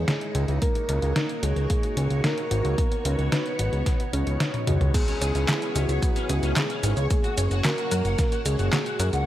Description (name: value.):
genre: synthwave.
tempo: 111 BPM.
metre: 4/4.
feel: straight.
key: C# dorian.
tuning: A4 = 441 Hz.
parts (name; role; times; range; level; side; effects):
soft octave-layered synth lead; melody; 0.0-9.2 s; F#4 to C#5; -31 LUFS; right 1 dB; chorus, cassette tape, digital delay.
string machine, full ensemble; sustained chords; 0.0-9.2 s; G#3 to C#5; -32 LUFS; equal; ensemble chorus, sidechain pumping.
soft round pluck; arpeggios; 0.0-9.2 s; A#3 to A#4; -35 LUFS; left 2 dB; chorus, digital delay.
fat analog bass; bass; 0.0-9.2 s; F#1 to F#2; -24 LUFS; equal; sidechain pumping.
detuned 8-bit digital drum machine; drums; 0.1-9.2 s; crash cymbal, handclaps, hi-hat, shaker, snare drum, toms; -27 LUFS; equal; overdrive.
electronic kick drum; drums; 0.6-8.3 s; none; -24 LUFS; equal; none.
crunchy overdriven guitar; riff; 5.1-9.2 s; C#4 to F#5; -34 LUFS; left 2 dB; ensemble chorus, digital delay.
room: light reverb.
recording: none.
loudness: -22 LUFS.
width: side -13 dB against mid.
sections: 0.0-4.9 A section; 4.9-9.3 B section.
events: drum fill 4.5-4.9.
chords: 0.0 C#madd9; 0.6 D#m7/C#; 2.8 Badd9; 4.9 C#m7; 7.1 F#.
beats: 0.08 | 0.62 1.16 1.70 2.24 | 2.78 3.32 3.86 4.40 | 4.94 5.48 6.02 6.57 | 7.11 7.65 8.19 8.73.